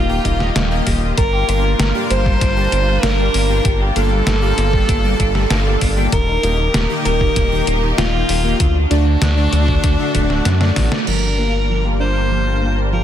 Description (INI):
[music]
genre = synthwave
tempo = 97 BPM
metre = 4/4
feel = straight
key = G minor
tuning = A4 = 438 Hz
[part]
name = edgy alto saxophone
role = melody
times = 0.0-13.0 s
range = D4 to C5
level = -22 LUFS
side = equal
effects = ping-pong delay, shimmer reverb
[part]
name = FM electric piano with soft pad layer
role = second line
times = 0.0-10.9 s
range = D4 to C5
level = -27 LUFS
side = right 1 dB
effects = none
[part]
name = lush unison pad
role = sustained chords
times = 0.0-13.0 s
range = G3 to Bb4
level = -24 LUFS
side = right 1 dB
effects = chorus, phaser, sidechain pumping, shimmer reverb
[part]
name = thumb-piano-like synth pluck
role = arpeggios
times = 0.0-1.0, 11.1-13.0 s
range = F3 to G4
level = -27 LUFS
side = right 5 dB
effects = chorus, digital delay, shimmer reverb
[part]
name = chorused polysynth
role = stabs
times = 0.0-13.0 s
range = G2 to A5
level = -25 LUFS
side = left 4 dB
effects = shimmer reverb
[part]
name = round analog bass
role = bass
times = 0.0-13.0 s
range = D1 to F#2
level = -18 LUFS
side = equal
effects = tube saturation
[part]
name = detuned 8-bit digital drum machine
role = drums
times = 0.2-11.2 s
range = crash cymbal, hi-hat, snare drum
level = -22 LUFS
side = equal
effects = studio reverb
[part]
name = electronic kick drum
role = drums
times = 0.2-10.9 s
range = none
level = -19 LUFS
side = equal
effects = studio reverb
[part]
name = semi-hollow electric guitar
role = riff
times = 1.2-11.0 s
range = D3 to G4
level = -27 LUFS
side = left 1 dB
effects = wide subtle chorus, digital delay, shimmer reverb
[sound]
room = light reverb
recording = dense, heavily limited modern master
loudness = -14 LUFS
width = side -10 dB against mid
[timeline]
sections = 0.0-11.1 A section; 11.1-13.0 B section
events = drum fill 10.5-11.1; band accent 10.9-11.2; filter sweep on synth arpeggio sound 11.1-13.0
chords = 0.0 Eb; 1.2 Gm7; 6.1 Eb; 8.6 D; 11.1 Gm7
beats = 0.56 | 1.18 1.80 2.41 3.03 | 3.65 4.27 4.89 5.51 | 6.13 6.74 7.36 7.98 | 8.60 9.22 9.84 10.46 | 11.07 11.69 12.31 12.93